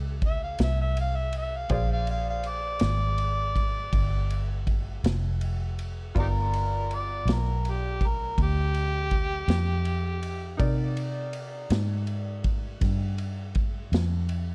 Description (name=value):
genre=slow blues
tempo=54 BPM (dotted quarters)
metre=12/8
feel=straight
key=Bb mixolydian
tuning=A4 = 436 Hz
part: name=bright upright piano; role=accompaniment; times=0.0-14.5 s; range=B3 to D5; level=-41 LUFS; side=equal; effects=none
part: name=vintage muted fingered electric bass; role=bass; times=0.0-14.5 s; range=F1 to C3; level=-30 LUFS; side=equal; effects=none
part: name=vintage drum kit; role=drums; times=0.2-14.5 s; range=kick drum, ride cymbal, snare drum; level=-33 LUFS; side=equal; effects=none
part: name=mellow harmonica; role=melody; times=0.3-10.6 s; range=Eb4 to F5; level=-34 LUFS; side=equal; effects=none
room=little or no reverb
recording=dark, warm production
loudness=-28 LUFS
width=mono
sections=0.0-14.5 A section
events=harmonica solo 0.0-14.5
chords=0.0 Edim7; 1.7 Bb7; 6.2 G7; 10.6 Cm7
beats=0.60 | 1.71 2.82 3.93 5.04 | 6.16 7.27 8.38 9.49 | 10.60 11.71 12.82 13.93